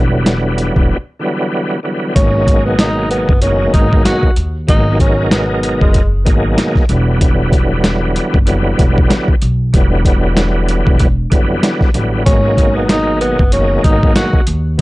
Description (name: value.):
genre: hip hop, boom-bap hip-hop.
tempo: 95 BPM.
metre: 4/4.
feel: swing 58% on 16ths.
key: G# minor.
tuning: A4 = 440 Hz.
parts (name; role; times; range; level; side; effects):
bright tonewheel organ; accompaniment; 0.0-14.8 s; B2 to A#4; -16 LUFS; equal; overdrive, chorus vibrato, fast rotary speaker, high-pass filter, low-pass filter.
upright bass; bass; 0.0-14.8 s; E1 to D#2; -16 LUFS; equal; transformer saturation.
boom bap sampler-style drum kit; drums; 0.3-14.8 s; hi-hat, kick drum, snare drum; -13 LUFS; equal; none.
breathy tenor saxophone; melody; 2.2-6.1, 12.3-14.4 s; G#3 to F#4; -17 LUFS; equal; high-pass filter, low-pass filter.
room: little or no reverb.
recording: dry, gritty hardware recording, nothing above 10.7 kHz.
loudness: -11 LUFS.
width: side -19 dB against mid.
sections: 0.0-2.2 A section; 2.2-14.8 B section.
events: break 0.9-2.2.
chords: 0.0 Em9; 2.2 G#m9; 6.9 Em9; 12.3 G#m9.